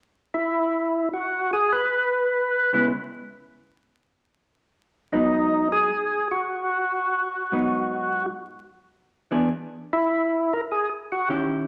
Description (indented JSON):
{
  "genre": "jazz",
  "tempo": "100 BPM",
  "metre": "4/4",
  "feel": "swing 68% on 8ths",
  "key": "G# minor",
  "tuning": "A4 = 440 Hz",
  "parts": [
    { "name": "percussive tonewheel organ", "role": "melody", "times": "0.3-11.3 s", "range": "D#4 to B4", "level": "-24 LUFS", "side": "equal", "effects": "slow rotary speaker, overdrive" },
    { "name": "vintage hollow-body jazz guitar", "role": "accompaniment", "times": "2.7-11.7 s", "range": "G#2 to G#4", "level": "-28 LUFS", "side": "equal", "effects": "none" }
  ],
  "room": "wet large studio reverb, RT60 1.2 s",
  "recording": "vinyl crackle",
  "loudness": "-24 LUFS",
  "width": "mono",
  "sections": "0.0-11.7 A section",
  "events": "none",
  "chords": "0.0 C#m7; 4.1 G#m7; 8.9 E7",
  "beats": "0.53 1.13 | 1.73 2.32 2.92 3.52 | 4.12 4.72 5.32 5.91 | 6.51 7.11 7.71 8.30 | 8.90 9.50 10.10 10.70 | 11.29"
}